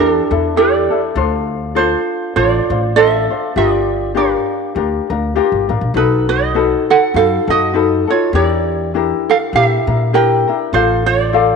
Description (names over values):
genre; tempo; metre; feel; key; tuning
Hawaiian; 100 BPM; 4/4; swing 57% on 8ths; D minor; A4 = 443 Hz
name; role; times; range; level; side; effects
ukulele; melody; 0.0-11.6 s; D4 to G5; -15 LUFS; right 7 dB; none
ukulele; accompaniment; 0.0-11.6 s; D4 to F5; -17 LUFS; left 10 dB; none
upright bass; bass; 0.0-11.5 s; G1 to Bb2; -20 LUFS; left 1 dB; none
room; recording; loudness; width
moderate echo chamber reverb, RT60 1.8 s; 1960s-style stereo with parts hard left and right; -12 LUFS; side -5 dB against mid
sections
0.0-11.6 A section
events
none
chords
0.0 A7sus4; 1.2 Dm7; 3.6 Gm7; 5.9 B7; 8.3 Em7b5; 10.7 Dm/A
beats
0.56 | 1.16 1.76 2.35 2.95 | 3.55 4.15 4.75 5.35 | 5.95 6.54 7.14 7.74 | 8.34 8.94 9.53 10.13 | 10.73 11.33